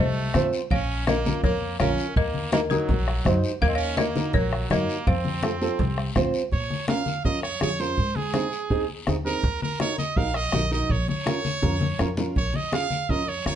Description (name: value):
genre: latin, cumbia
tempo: 165 BPM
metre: 4/4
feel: straight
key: Bb minor from 6.5 s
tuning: A4 = 442 Hz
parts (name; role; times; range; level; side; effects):
- folk marimba with hard mallets; melody; 0.0-6.1 s; Gb4 to F5; -28 LUFS; left 2 dB; none
- brilliant trumpet; second line; 0.0-13.5 s; Gb3 to F5; -30 LUFS; right 5 dB; none
- upright bass; bass; 0.0-13.6 s; Bb1 to Bb2; -28 LUFS; equal; none
- congas; percussion; 0.2-13.6 s; none; -29 LUFS; left 3 dB; none
- flamenco guitar; accompaniment; 0.3-13.5 s; C4 to Db5; -28 LUFS; right 3 dB; none
- bombo; percussion; 0.3-13.6 s; none; -27 LUFS; equal; none
- guiro; percussion; 0.3-13.6 s; none; -40 LUFS; left 6 dB; none
room: light reverb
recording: nothing above 10.8 kHz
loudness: -22 LUFS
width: side -10 dB against mid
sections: 0.0-6.5 A section; 6.5-13.6 B section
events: trumpet solo 6.5-13.6; drum fill 11.6-12.4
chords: 0.0 F7; 0.7 Bbm; 2.2 Ebm; 5.1 F; 6.5 Bbm; 8.0 Ab; 9.4 Ebm; 10.9 Bbm